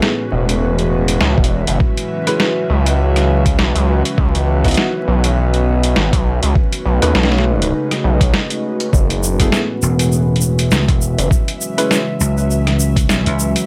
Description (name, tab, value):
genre	glitch hop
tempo	101 BPM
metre	4/4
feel	swing 57% on 16ths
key	F# dorian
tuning	A4 = 440 Hz
part	warbly tape-like pad	sustained chords	0.0-13.7 s	A2 to D#4	-26 LUFS	equal	chorus, built-in reverb, phaser, sidechain pumping
part	warm concert grand piano	stabs	0.0-12.0 s	G#3 to B4	-24 LUFS	equal	sidechain pumping, low-pass filter, delay
part	boom bap sampler-style drum kit	drums	0.0-13.7 s	hi-hat, rim click, snare drum	-21 LUFS	equal	none
part	airy breathy pad	texture	0.1-13.7 s	C#4 to E5	-26 LUFS	equal	chorus, sidechain pumping
part	gritty driven synth bass	bass	0.3-11.3 s	E1 to D#2	-18 LUFS	equal	overdrive
part	electronic kick drum	drums	1.4-13.1 s	none	-18 LUFS	equal	none
part	tube shaker	percussion	8.9-13.7 s	none	-27 LUFS	equal	none
part	vintage slap bass	bass	9.8-13.5 s	E1 to C#2	-18 LUFS	equal	none
room	light reverb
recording	vinyl crackle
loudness	-15 LUFS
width	mono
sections	0.0-13.7 A section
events	break 8.3-8.9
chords	0.0 F#m11; 1.8 E69; 4.2 C#m11; 6.6 B13; 8.9 F#m11; 11.3 E69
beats	0.02 0.62 1.21 | 1.81 2.40 3.00 3.59 | 4.18 4.78 5.37 5.96 | 6.56 7.15 7.75 8.34 | 8.94 9.53 10.12 10.72 | 11.31 11.91 12.50 13.09